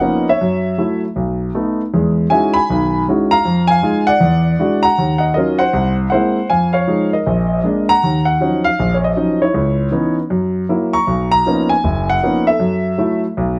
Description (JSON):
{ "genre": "solo jazz", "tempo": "157 BPM", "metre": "4/4", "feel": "swing 65% on 8ths", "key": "Eb minor", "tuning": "A4 = 440 Hz", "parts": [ { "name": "warm grand piano", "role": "solo", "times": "0.0-13.6 s", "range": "F#1 to Db6", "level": "-16 LUFS", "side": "equal", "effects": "none" } ], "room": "light reverb", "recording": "close, detailed microphones", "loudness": "-16 LUFS", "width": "mono", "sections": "0.0-8.0 A section; 8.0-13.6 A section", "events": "none", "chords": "0.4 Gbm7; 1.1 B7; 1.9 Emaj13; 3.4 Fm7; 4.2 E9; 5.0 Ebm9; 5.7 C7b13; 6.5 Db69/F; 7.3 Bb7; 8.0 Ebm9; 9.5 Dbm9; 10.3 Gb7; 11.1 Bmaj9#11; 12.6 Gbm7" }